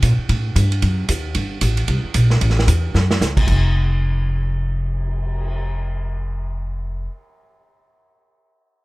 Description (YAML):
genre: jazz, small-group swing and bop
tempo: 226 BPM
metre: 4/4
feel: swing 60% on 8ths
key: unclear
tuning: A4 = 442 Hz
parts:
  - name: upright bass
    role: bass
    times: 0.0-7.1 s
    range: F1 to Bb2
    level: -18 LUFS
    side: equal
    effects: none
  - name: vintage drum kit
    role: drums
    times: 0.0-5.5 s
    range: crash cymbal, cymbal swell, hi-hat, kick drum, ride cymbal, snare drum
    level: -23 LUFS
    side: right 1 dB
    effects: none
room: little or no reverb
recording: none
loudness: -17 LUFS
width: side -21 dB against mid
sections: 0.0-3.5 A section; 3.5-5.6 B section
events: drum fill 2.9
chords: none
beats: 0.02 | 0.29 0.55 0.82 1.08 | 1.35 1.61 1.88 2.14 | 2.41 2.67 2.94 3.21 | 3.47 3.74 4.00 4.27 | 4.53 4.80 5.06 5.33